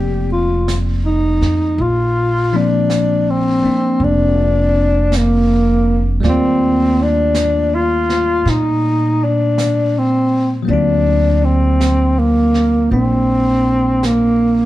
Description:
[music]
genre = jazz ballad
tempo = 54 BPM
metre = 4/4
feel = swing 67% on 8ths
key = Bb major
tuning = A4 = 440 Hz
[part]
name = breathy alto saxophone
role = melody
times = 0.0-14.7 s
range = A#3 to G4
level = -15 LUFS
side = equal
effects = plate reverb
[part]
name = bell-like tine electric piano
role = accompaniment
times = 0.0-14.7 s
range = F3 to D5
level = -21 LUFS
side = moving between left 4 dB and right 2 dB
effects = auto-pan
[part]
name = upright bass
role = bass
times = 0.0-14.7 s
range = F1 to Bb2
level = -17 LUFS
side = equal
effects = none
[part]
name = jazz brush drum kit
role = drums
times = 0.7-14.7 s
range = brushed snare drum, hi-hat, snare drum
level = -30 LUFS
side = right 3 dB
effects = none
[sound]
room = moderate club reverb, RT60 0.8 s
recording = none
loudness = -12 LUFS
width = side -15 dB against mid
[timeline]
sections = 0.0-14.7 A section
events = none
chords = 0.0 Bbmaj9; 1.8 Bb7; 6.2 Ebmaj9#11; 10.7 D7alt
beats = 0.68 | 1.79 2.90 4.01 5.12 | 6.23 7.34 8.45 9.57 | 10.68 11.80 12.91 14.03

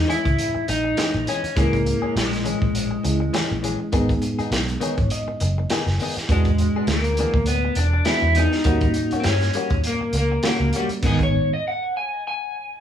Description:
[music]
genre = straight-eighth soul blues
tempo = 102 BPM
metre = 4/4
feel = swing 56% on 16ths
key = G# minor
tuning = A4 = 440 Hz
[part]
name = electric guitar through a small old amp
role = melody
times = 0.0-12.8 s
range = G3 to G#5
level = -24 LUFS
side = left 2 dB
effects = lush chorus
[part]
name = reed electric piano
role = accompaniment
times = 0.0-11.5 s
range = B2 to G#5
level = -27 LUFS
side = right 3 dB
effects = overdrive, fast tremolo
[part]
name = vintage muted fingered electric bass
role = bass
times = 0.0-11.4 s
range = E1 to G2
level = -23 LUFS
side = equal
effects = none
[part]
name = direct-recorded clean electric guitar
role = stabs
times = 0.1-11.2 s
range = D#3 to G#4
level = -29 LUFS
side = left 5 dB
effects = none
[part]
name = crunchy breakbeat drum kit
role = drums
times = 0.1-11.3 s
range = crash cymbal, hi-hat, kick drum, snare drum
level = -25 LUFS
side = equal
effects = none
[sound]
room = light reverb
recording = small room ambience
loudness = -19 LUFS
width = side -9 dB against mid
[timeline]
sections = 0.0-12.8 A section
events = reed electric piano fill 4.5-6.3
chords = 0.0 C#m; 3.9 G#m; 6.3 E7; 8.7 D#7#9; 11.0 G#m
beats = 0.38 0.97 | 1.57 2.16 2.75 3.34 | 3.93 4.52 5.11 5.71 | 6.30 6.89 7.48 8.07 | 8.66 9.25 9.85 10.44 | 11.03 11.62 12.21

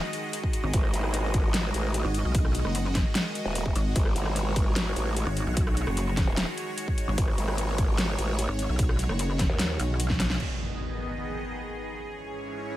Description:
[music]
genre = heavy wobble dubstep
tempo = 149 BPM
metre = 4/4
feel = half-time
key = G# minor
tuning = A4 = 439 Hz
[part]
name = supersaw pad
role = sustained chords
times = 0.0-12.8 s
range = G#2 to D#5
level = -34 LUFS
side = equal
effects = phaser, sidechain pumping
[part]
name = dubstep drum kit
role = drums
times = 0.1-10.5 s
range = crash cymbal, hi-hat, rim click, snare drum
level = -32 LUFS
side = equal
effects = studio reverb
[part]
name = electronic kick drum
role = drums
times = 0.4-10.2 s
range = none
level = -26 LUFS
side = equal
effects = studio reverb
[part]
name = pulsing pluck wobble bass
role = bass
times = 0.6-10.4 s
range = F#1 to B1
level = -27 LUFS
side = equal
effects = chorus, overdrive
[part]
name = growl bass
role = bass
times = 0.7-9.8 s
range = D#1 to D#2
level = -28 LUFS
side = equal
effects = chorus, overdrive
[part]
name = impact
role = sound effects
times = 10.4-12.0 s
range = none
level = -36 LUFS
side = equal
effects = none
[sound]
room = digital ambience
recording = none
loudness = -25 LUFS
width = side -14 dB against mid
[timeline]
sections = 0.0-10.4 A section; 10.4-12.8 B section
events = drop 0.0-10.4; drum fill 10.1-10.4; band accent 10.3; impact 10.4-12.0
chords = 0.0 G#5; 10.4 G#m; 12.0 C#m/G#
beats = 0.33 | 0.74 1.14 1.54 1.94 | 2.35 2.75 3.15 3.55 | 3.96 4.36 4.76 5.17 | 5.57 5.97 6.37 6.78 | 7.18 7.58 7.98 8.39 | 8.79 9.19 9.60 10.00 | 10.40 10.80 11.21 11.61 | 12.01 12.41

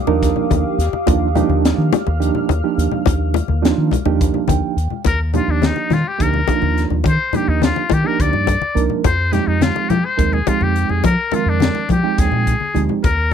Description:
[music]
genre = electric jazz fusion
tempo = 211 BPM (eighths)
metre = 7/8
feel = straight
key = Eb major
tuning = A4 = 440 Hz
[part]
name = deep dark ambient pad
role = sustained chords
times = 0.0-5.0 s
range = G4 to F6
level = -26 LUFS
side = left 2 dB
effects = chorus, built-in reverb
[part]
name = reed electric piano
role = accompaniment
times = 0.1-13.0 s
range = Eb3 to G5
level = -20 LUFS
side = right 13 dB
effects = fast tremolo
[part]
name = deep dub fingered electric bass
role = bass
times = 0.1-13.3 s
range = C2 to F3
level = -18 LUFS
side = equal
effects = none
[part]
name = congas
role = percussion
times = 0.1-13.3 s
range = none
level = -22 LUFS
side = left 14 dB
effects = none
[part]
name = crisp fusion drum kit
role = drums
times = 0.2-13.2 s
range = hi-hat, kick drum, snare drum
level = -20 LUFS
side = left 1 dB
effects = none
[part]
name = trumpet with metal mute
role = melody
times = 5.1-13.3 s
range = D4 to D5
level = -21 LUFS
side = left 4 dB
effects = slapback echo
[sound]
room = light reverb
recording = none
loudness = -15 LUFS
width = side -8 dB against mid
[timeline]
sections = 0.0-5.1 A section; 5.1-13.3 B section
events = reed electric piano fill 4.2-5.1; drum fill 12.5-13.0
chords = 0.0 Ebmaj9; 9.0 Fm9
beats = 0.23 0.51 0.79 | 1.08 1.36 1.65 1.93 2.21 2.50 2.78 | 3.07 3.35 3.64 3.92 4.21 4.49 4.78 | 5.06 5.34 5.63 5.91 6.20 6.48 6.77 | 7.05 7.34 7.62 7.91 8.19 8.48 8.76 | 9.05 9.33 9.62 9.90 10.19 10.47 10.76 | 11.04 11.33 11.61 11.90 12.18 12.47 12.75 | 13.04 13.32

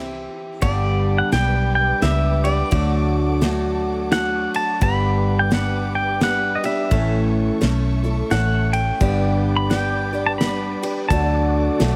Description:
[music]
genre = honky-tonk and classic country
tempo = 86 BPM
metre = 3/4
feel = swing 61% on 8ths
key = unclear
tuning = A4 = 441 Hz
[part]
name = pedal steel guitar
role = melody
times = 0.0-12.0 s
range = E4 to B5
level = -26 LUFS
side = equal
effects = none
[part]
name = picked steel-string acoustic guitar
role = accompaniment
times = 0.0-12.0 s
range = G2 to A4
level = -25 LUFS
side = equal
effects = none
[part]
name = vintage muted fingered electric bass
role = bass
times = 0.0-12.0 s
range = G1 to D2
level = -24 LUFS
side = equal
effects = none
[part]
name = warm studio violin section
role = sustained chords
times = 0.6-12.0 s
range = G4 to D6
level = -37 LUFS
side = equal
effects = none
[part]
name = damped 70s drum kit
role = drums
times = 0.6-12.0 s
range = kick drum, ride cymbal, snare drum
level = -28 LUFS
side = equal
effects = none
[part]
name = overdriven tonewheel organ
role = accompaniment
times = 9.0-12.0 s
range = D4 to D5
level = -35 LUFS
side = equal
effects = none
[sound]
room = little or no reverb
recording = none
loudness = -20 LUFS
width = mono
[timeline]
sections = 0.6-12.0 A section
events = none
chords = 0.0 C; 0.6 G; 2.7 D; 4.8 G; 6.9 A; 9.0 G; 11.1 D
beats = | 0.62 1.32 2.02 | 2.72 3.42 4.12 | 4.82 5.51 6.21 | 6.91 7.61 8.31 | 9.01 9.70 10.40 | 11.10 11.80

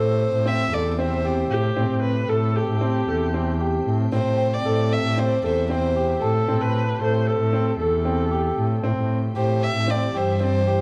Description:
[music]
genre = contemporary instrumental, chamber music in an uneven meter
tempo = 229 BPM (eighths)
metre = 9/8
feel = straight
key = A minor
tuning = A4 = 440 Hz
[part]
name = warm violin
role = melody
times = 0.0-10.8 s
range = C5 to E5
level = -28 LUFS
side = equal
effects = tape echo
[part]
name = soft additive organ-like pad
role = sustained chords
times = 0.0-10.8 s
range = C3 to G4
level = -35 LUFS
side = equal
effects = ensemble chorus, built-in reverb
[part]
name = clear concert grand piano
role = arpeggios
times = 0.0-10.8 s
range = C4 to A4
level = -28 LUFS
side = equal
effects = none
[part]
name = warm double bass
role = bass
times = 0.0-10.8 s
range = E2 to A2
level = -25 LUFS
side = equal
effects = none
[part]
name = glockenspiel with rubber mallets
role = texture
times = 0.0-9.1 s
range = G5 to E6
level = -39 LUFS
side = equal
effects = none
[part]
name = rich viola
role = second line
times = 1.5-8.8 s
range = G4 to C5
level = -29 LUFS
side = equal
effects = none
[sound]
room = light reverb, small room reverb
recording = echo-heavy mix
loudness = -22 LUFS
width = mono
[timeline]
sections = 0.0-10.8 A section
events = none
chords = 0.0 Am7; 8.8 C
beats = 0.20 0.47 0.73 0.99 1.25 1.51 | 1.77 2.04 2.30 2.56 2.82 3.08 3.34 3.60 3.87 | 4.13 4.39 4.65 4.91 5.17 5.44 5.70 5.96 6.22 | 6.48 6.75 7.01 7.27 7.53 7.79 8.05 8.31 8.58 | 8.84 9.10 9.36 9.62 9.89 10.15 10.41 10.67

